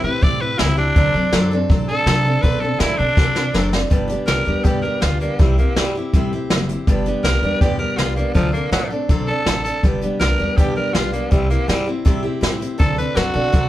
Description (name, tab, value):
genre	rockabilly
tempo	162 BPM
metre	4/4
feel	straight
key	G major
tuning	A4 = 440 Hz
part	raspy tenor saxophone	melody	0.0-13.7 s	F3 to D5	-22 LUFS	equal	none
part	picked steel-string acoustic guitar	accompaniment	0.0-13.7 s	G2 to A4	-22 LUFS	left 1 dB	none
part	upright bass	bass	0.0-13.7 s	F#1 to C3	-22 LUFS	equal	none
part	jazz brush drum kit	drums	0.2-13.6 s	hi-hat, kick drum, snare drum	-19 LUFS	equal	none
room	moderate studio reverb, RT60 0.8 s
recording	band playing live in one room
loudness	-16 LUFS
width	side -14 dB against mid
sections	0.0-3.9 A section; 3.9-13.7 B section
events	drum fill 3.2-3.9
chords	0.0 C; 1.0 D7; 3.9 G; 5.4 C; 6.9 G; 8.4 D7; 9.8 G; 11.3 C; 12.8 D7